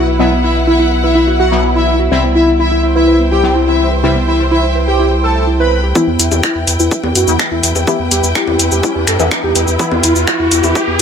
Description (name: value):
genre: melodic techno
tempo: 125 BPM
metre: 4/4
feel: straight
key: E minor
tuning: A4 = 441 Hz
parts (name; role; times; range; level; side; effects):
- fat analog lead; melody; 0.0-11.0 s; E4 to B4; -16 LUFS; equal; analog chorus, sidechain pumping, ping-pong delay
- bright symphonic violin section; second line; 0.0-5.8 s; E5 to B5; -21 LUFS; equal; vintage 12-bit sampler grit, sidechain pumping, ping-pong delay
- deep dark ambient pad; sustained chords; 0.0-11.0 s; B3 to F#5; -24 LUFS; equal; chorus, built-in reverb, sidechain pumping
- woody wave-folded pluck; arpeggios; 0.0-11.0 s; B3 to G5; -19 LUFS; equal; chorus, sidechain pumping, ping-pong delay
- synth brass stab; stabs; 0.0-9.9 s; B2 to E4; -19 LUFS; left 3 dB; chorus, phaser, sidechain pumping, ping-pong delay
- gritty driven synth bass; bass; 0.0-11.0 s; B1 to F#2; -16 LUFS; equal; sidechain pumping
- clear studio string section; texture; 0.0-11.0 s; E4 to G5; -21 LUFS; equal; sidechain pumping
- electronic kick drum; drums; 6.0-10.9 s; none; -18 LUFS; equal; overdrive, high-pass filter on kick
- techno drum kit; drums; 6.0-11.0 s; congas, finger snaps, hi-hat, shaker; -15 LUFS; left 1 dB; sidechain pumping on perc, high-pass filter on perc, low-pass filter on perc, sidechain pumping on hats, high-pass filter on hats, low-pass filter on hats, high-pass filter on snare, low-pass filter on snare, high-pass filter on room, low-pass filter on room
- riser; sound effects; 7.5-11.0 s; none; -21 LUFS; equal; none
room: moderate lush hall reverb, RT60 1.6 s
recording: none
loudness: -10 LUFS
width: side -7 dB against mid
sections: 0.0-6.0 A section; 6.0-11.0 B section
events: filter sweep on synth stab 0.0-6.0, 6.0-11.0; build-up 6.0-11.0; riser 7.5-11.0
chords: 0.0 Bsus4; 2.1 C; 6.0 Em